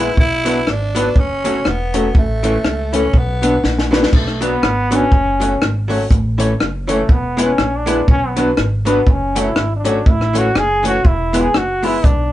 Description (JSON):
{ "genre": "ska", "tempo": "121 BPM", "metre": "4/4", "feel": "swing 59% on 8ths", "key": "B dorian", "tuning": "A4 = 440 Hz", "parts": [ { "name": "growling tenor saxophone", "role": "melody", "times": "0.0-3.9 s", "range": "A3 to E4", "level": "-21 LUFS", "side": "equal", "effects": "none" }, { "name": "archtop guitar, miked and amplified", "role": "accompaniment", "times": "0.0-12.0 s", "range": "E3 to E4", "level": "-21 LUFS", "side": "right 2 dB", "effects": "tape echo" }, { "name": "dark upright piano", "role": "stabs", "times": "0.0-11.9 s", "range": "A3 to C#5", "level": "-20 LUFS", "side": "left 2 dB", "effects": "none" }, { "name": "upright bass", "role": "bass", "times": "0.0-12.3 s", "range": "E1 to C#2", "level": "-21 LUFS", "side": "equal", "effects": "none" }, { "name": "compact cocktail drum kit", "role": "drums", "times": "0.2-12.2 s", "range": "crash cymbal, hi-hat, kick drum, rim click, snare drum", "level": "-15 LUFS", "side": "equal", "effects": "none" }, { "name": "bright trombone", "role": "melody", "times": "4.1-12.3 s", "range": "A3 to G#4", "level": "-19 LUFS", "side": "equal", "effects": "none" } ], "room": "moderate small room ambience, RT60 0.5 s", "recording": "band playing live in one room, nothing above 10.6 kHz", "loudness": "-13 LUFS", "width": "side -14 dB against mid", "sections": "0.0-4.1 A section; 4.1-12.3 B section", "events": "drum fill 3.6-4.1; trombone solo 4.1-12.3", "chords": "0.2 Bm; 1.2 F#m; 2.2 A; 3.1 Bm; 5.1 F#m; 6.1 A; 7.1 E; 8.1 Bm; 9.1 F#m; 10.1 A; 11.1 E", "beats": "| 0.18 0.67 1.17 1.66 | 2.16 2.65 3.14 3.64 | 4.13 4.62 5.12 5.61 | 6.11 6.60 7.09 7.59 | 8.08 8.58 9.07 9.57 | 10.06 10.56 11.05 11.55 | 12.04" }